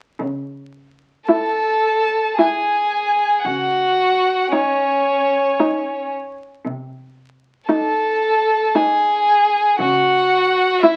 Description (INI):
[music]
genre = classical, slow romantic movement for string quartet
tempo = 57 BPM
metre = 3/4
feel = rubato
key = C# minor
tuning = A4 = 440 Hz
[part]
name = warm cello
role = bass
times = 0.2-10.6 s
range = C3 to C#3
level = -30 LUFS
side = equal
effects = none
[part]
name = rich violin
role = melody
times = 1.3-11.0 s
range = C#5 to A5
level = -22 LUFS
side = equal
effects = none
[part]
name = rich violin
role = second line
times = 1.3-11.0 s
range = C#4 to A4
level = -20 LUFS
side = equal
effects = none
[part]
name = dark viola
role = accompaniment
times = 1.3-11.0 s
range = D#4 to E4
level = -20 LUFS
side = equal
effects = none
[sound]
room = moderate studio reverb, RT60 0.9 s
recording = very old 78 rpm record, vinyl crackle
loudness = -18 LUFS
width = mono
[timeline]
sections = 0.2-11.0 A section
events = none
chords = 0.2 C#m; 3.5 C#sus24; 6.6 Cm6; 9.8 C#m